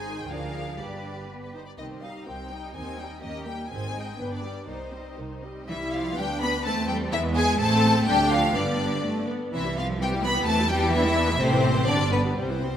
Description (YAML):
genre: quick classical-period movement for string orchestra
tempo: 114-130 BPM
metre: 2/4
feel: rubato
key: C minor, C major from 5.7 s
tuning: A4 = 440 Hz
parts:
  - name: rich studio violin section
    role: melody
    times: 0.0-12.8 s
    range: B4 to B5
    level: -29 LUFS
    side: left 2 dB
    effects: none
  - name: rich studio violin section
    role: second line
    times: 0.0-12.8 s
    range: B3 to Eb5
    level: -31 LUFS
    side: left 2 dB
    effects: none
  - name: rich studio viola section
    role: accompaniment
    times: 0.0-12.8 s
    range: D3 to E4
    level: -30 LUFS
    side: equal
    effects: none
  - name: dark studio double bass section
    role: bass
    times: 0.0-12.8 s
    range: G1 to E2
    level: -31 LUFS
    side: right 2 dB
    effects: none
  - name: rich studio cello section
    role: bass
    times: 0.0-12.8 s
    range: B2 to B4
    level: -30 LUFS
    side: right 2 dB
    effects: none
room: wet scoring stage reverb, RT60 1.8 s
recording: none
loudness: -22 LUFS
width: side -9 dB against mid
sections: 0.0-5.7 A section; 5.7-12.8 A section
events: none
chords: 0.3 Ddim; 0.8 G; 1.8 Cm; 2.8 Cm/Eb; 3.2 Eb7; 3.7 Ab; 4.2 G; 4.7 Cm; 5.7 C; 6.7 C/E; 7.1 E; 7.6 Am; 8.1 Dm; 8.5 G; 9.5 C; 10.5 C/E; 10.9 E7; 11.4 Am; 11.9 G